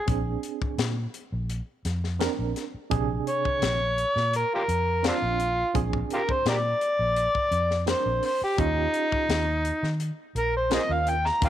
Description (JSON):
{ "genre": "straight-eighth soul blues", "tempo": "85 BPM", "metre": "4/4", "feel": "straight", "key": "Bb mixolydian", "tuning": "A4 = 440 Hz", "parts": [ { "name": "overdriven harmonica", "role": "melody", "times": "0.0-11.5 s", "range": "C4 to Bb5", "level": "-25 LUFS", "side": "equal", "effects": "none" }, { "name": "barky reed electric piano", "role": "accompaniment", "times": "0.1-11.5 s", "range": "C3 to Bb4", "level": "-32 LUFS", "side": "right 12 dB", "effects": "overdrive, fast tremolo" }, { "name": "vintage muted fingered electric bass", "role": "bass", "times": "0.1-11.5 s", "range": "Bb1 to Eb3", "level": "-29 LUFS", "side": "equal", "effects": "none" }, { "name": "tight funk drum kit", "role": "drums", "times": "0.1-11.5 s", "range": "hi-hat, kick drum, snare drum", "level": "-31 LUFS", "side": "left 4 dB", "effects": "none" } ], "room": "light reverb", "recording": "1960s-style stereo", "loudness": "-24 LUFS", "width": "side -11 dB against mid", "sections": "0.0-11.5 A section", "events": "harmonica solo 0.0-11.5", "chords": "0.0 Bb9; 8.6 Eb9", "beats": "| 0.08 0.79 1.50 2.21 | 2.91 3.62 4.33 5.04 | 5.75 6.46 7.17 7.87 | 8.58 9.29 10.00 10.71 | 11.41" }